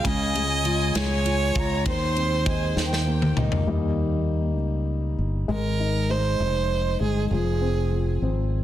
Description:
six-eight pop ballad; 66 BPM (dotted quarters); 6/8; straight; Ab major; A4 = 440 Hz
warm violin; melody; 0.0-8.2 s; Ab4 to Eb5; -28 LUFS; right 5 dB; tape echo
rich studio violin section; second line; 0.0-3.3 s; G5 to C6; -32 LUFS; left 3 dB
warm grand piano; accompaniment; 0.0-8.6 s; Db3 to Ab4; -28 LUFS; left 4 dB
picked steel-string acoustic guitar; arpeggios; 0.0-4.2 s; Eb3 to Ab4; -33 LUFS; right 7 dB
fretless electric bass; bass; 0.0-8.6 s; F1 to Eb2; -25 LUFS; equal
modern studio drum kit; drums; 0.0-3.7 s; kick drum, ride cymbal, snare drum, toms; -28 LUFS; left 1 dB
light reverb, small room ambience; dense, heavily limited modern master; -21 LUFS; side -12 dB against mid
0.0-3.7 A section; 3.7-5.5 B section; 5.5-8.6 C section
drum fill 2.8-3.7; grand piano solo 3.7-5.5
0.0 Db; 1.9 Ab/Eb; 2.8 Eb; 5.5 Abadd9; 7.3 Fm

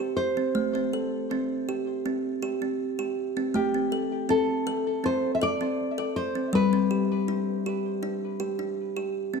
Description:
world meditative, meditative tuned percussion; 80 BPM; 4/4; straight; A4 = 440 Hz
nylon-string guitar; melody; 0.0-8.7 s; G4 to E5; -28 LUFS; left 1 dB; ping-pong delay
kalimba; arpeggios; 0.0-9.4 s; G3 to A4; -27 LUFS; equal
wet echo chamber reverb, RT60 1.6 s, small room ambience; dark, warm production; -25 LUFS; side -5 dB against mid
0.0-9.4 A section
0.0 C5/A; 3.5 Am; 6.5 G

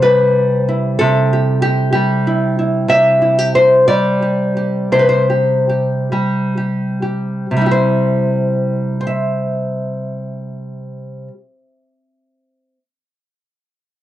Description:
folk, solo fingerstyle acoustic guitar; 40-64 BPM (dotted quarters); 6/8; rubato; C major; A4 = 440 Hz
nylon-string guitar; solo; 0.0-12.8 s; C3 to E5; -13 LUFS; equal; cassette tape
moderate studio reverb, RT60 0.6 s; home recording on cassette; -13 LUFS; side -13 dB against mid
0.0-7.5 A section; 7.5-13.4 B section
slowing down 2.9-7.5
0.0 C

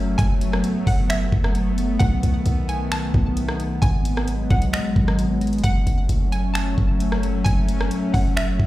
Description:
hip hop, atmospheric cloud-rap; 132 BPM; 4/4; half-time; F# dorian; A4 = 440 Hz
hollow square pluck; melody; 0.0-8.7 s; D#5 to A5; -31 LUFS; right 1 dB; chorus, digital delay
airy breathy pad; sustained chords; 0.0-8.7 s; D#3 to C#4; -24 LUFS; left 1 dB; chorus, sidechain pumping
warm 808-style bass; bass; 0.0-8.7 s; F#1 to B1; -22 LUFS; equal
smooth R&B drum kit; drums; 0.2-8.7 s; finger snaps, hi-hat, kick drum, rim click; -22 LUFS; equal
digital ambience; played on a big sound system in a bare room, large studio reverb; -18 LUFS; side -16 dB against mid
0.0-8.7 A section
0.0 F#m; 2.0 B7; 3.8 G#m7; 5.6 F#m

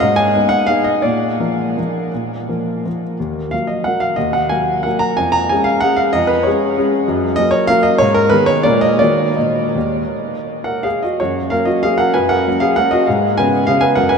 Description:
classical, piano waltz; 156-206 BPM; 3/4; rubato; Eb minor; A4 = 435 Hz
warm grand piano; solo; 0.0-14.2 s; Eb2 to Bb5; -13 LUFS; equal
wet huge ambient reverb, RT60 7.0 s; in a vast, echoing space; -14 LUFS; side -6 dB against mid
0.0-11.2 A section; 11.2-14.2 B section
0.0 Abm; 1.0 Bb; 3.2 Ebm; 5.2 Db/F; 7.1 Gb; 8.0 Abm; 8.7 Bb7; 9.0 Ebm; 11.2 F#; 13.1 C#7/G#

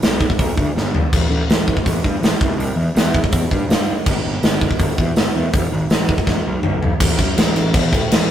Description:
punk rock; 163 BPM; 4/4; straight; A4 = 444 Hz
fuzz picked electric bass; bass; 0.0-8.3 s; E1 to A2; -20 LUFS; equal; overdrive
big rock drum kit; drums; 0.0-8.2 s; crash cymbal, hi-hat, kick drum, snare drum, toms; -16 LUFS; equal
light reverb; rough rehearsal-room recording, tube saturation; -15 LUFS; side -10 dB against mid
0.0-7.0 A section; 7.0-8.3 B section
drum fill 0.8-1.1, 6.3-7.0

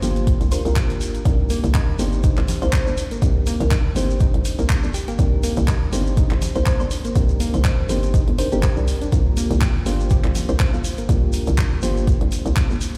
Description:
deep house; 122 BPM; 4/4; swing 56% on 16ths; C minor; A4 = 439 Hz
thumb-piano-like synth pluck; melody; 0.0-10.7 s; G4 to C5; -34 LUFS; equal; chorus, phaser, digital delay
mellow FM electric piano; stabs; 0.0-13.0 s; Bb3 to C5; -30 LUFS; equal; chorus, sidechain pumping, dub echo
hollow knocking FM bass; bass; 0.0-12.8 s; G1 to C2; -24 LUFS; equal; sidechain pumping
deep house drum kit; drums; 0.0-13.0 s; handclaps, hi-hat; -33 LUFS; equal; overdrive
congas; percussion; 0.0-11.9 s; -32 LUFS; equal
shekere; percussion; 0.0-13.0 s; -39 LUFS; equal
electronic kick drum; drums; 0.3-12.7 s; -21 LUFS; equal; overdrive
soft round pluck; arpeggios; 1.5-11.0 s; Bb3 to G4; -33 LUFS; equal; chorus, sidechain pumping, dub echo
little or no reverb; played on a big sound system in a bare room, large studio reverb; -20 LUFS; mono
0.0-13.0 A section
0.0 Bb6; 1.3 Cm9; 9.1 Bb6

